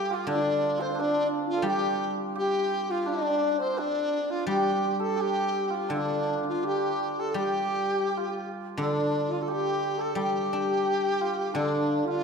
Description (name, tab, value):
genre	chinese traditional, Chinese chamber ensemble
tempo	86 BPM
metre	4/4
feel	rubato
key	D yu mode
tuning	A4 = 440 Hz
part	mellow large dizi	melody	0.0-12.2 s	D4 to C5	-28 LUFS	equal	none
part	hammered dulcimer	second line	0.0-12.2 s	C4 to A4	-31 LUFS	right 4 dB	none
part	mellow hollow xiao	second line	0.0-12.2 s	D4 to D5	-33 LUFS	left 4 dB	none
part	guzheng	accompaniment	0.0-12.2 s	D3 to D4	-33 LUFS	left 2 dB	none
room	wet concert hall reverb, RT60 2.2 s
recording	minimal, uncompressed stereo recording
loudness	-25 LUFS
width	side -5 dB against mid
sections	0.0-12.2 A section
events	none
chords	none